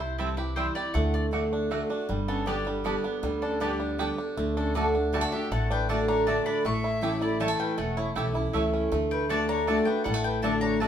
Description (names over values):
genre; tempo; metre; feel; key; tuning
bluegrass; 158 BPM; 3/4; straight; D major; A4 = 439 Hz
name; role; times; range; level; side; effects
bluegrass banjo; melody; 0.0-10.9 s; G3 to G4; -33 LUFS; right 1 dB; none
mandolin; melody; 0.0-10.9 s; A4 to C#6; -34 LUFS; left 4 dB; none
picked steel-string acoustic guitar; accompaniment; 0.0-10.9 s; E2 to G4; -28 LUFS; equal; none
upright bass; bass; 0.0-10.9 s; E1 to D2; -32 LUFS; equal; none
mandolin; stabs; 0.2-10.9 s; A3 to A5; -33 LUFS; right 3 dB; none
clear fiddle; second line; 2.3-10.9 s; C#4 to E5; -35 LUFS; left 2 dB; none
room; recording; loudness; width
wet studio reverb, RT60 0.7 s; band playing live in one room; -25 LUFS; side -9 dB against mid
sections
0.0-2.1 A section; 2.1-10.9 B section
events
none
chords
0.0 C; 1.0 D; 2.1 Gadd9; 4.4 D; 6.6 A; 8.9 D